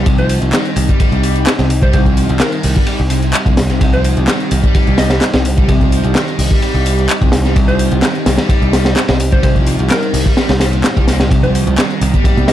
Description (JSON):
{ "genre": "breakbeat, breaks", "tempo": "128 BPM", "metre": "4/4", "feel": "straight", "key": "C minor", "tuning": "A4 = 440 Hz", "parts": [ { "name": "dark analog pad", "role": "sustained chords", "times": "0.0-12.5 s", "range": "G3 to Eb4", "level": "-21 LUFS", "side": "right 1 dB", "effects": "chorus, sidechain pumping" }, { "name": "crunchy overdriven guitar", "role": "riff", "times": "0.0-12.5 s", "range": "Bb2 to Bb3", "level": "-20 LUFS", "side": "left 1 dB", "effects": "tape echo" }, { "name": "modern bright picked electric bass", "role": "bass", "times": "0.0-12.5 s", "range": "C2", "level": "-15 LUFS", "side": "equal", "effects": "none" }, { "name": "crunchy breakbeat drum kit", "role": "drums", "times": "0.1-12.5 s", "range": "hi-hat, kick drum, ride cymbal, snare drum", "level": "-14 LUFS", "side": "equal", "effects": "none" }, { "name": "house drum kit", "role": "drums", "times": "0.1-12.5 s", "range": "handclaps, hi-hat", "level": "-22 LUFS", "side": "left 1 dB", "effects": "overdrive" }, { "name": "hollow square pluck", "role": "melody", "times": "0.2-12.5 s", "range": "Bb4 to Eb5", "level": "-22 LUFS", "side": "equal", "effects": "chorus, telephone sound, tape echo" }, { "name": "congas", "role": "percussion", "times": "11.4-12.5 s", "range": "none", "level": "-22 LUFS", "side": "right 2 dB", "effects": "none" } ], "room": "light reverb", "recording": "dark, warm production", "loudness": "-11 LUFS", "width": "side -12 dB against mid", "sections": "0.0-12.5 A section", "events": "none", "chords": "0.0 Cm" }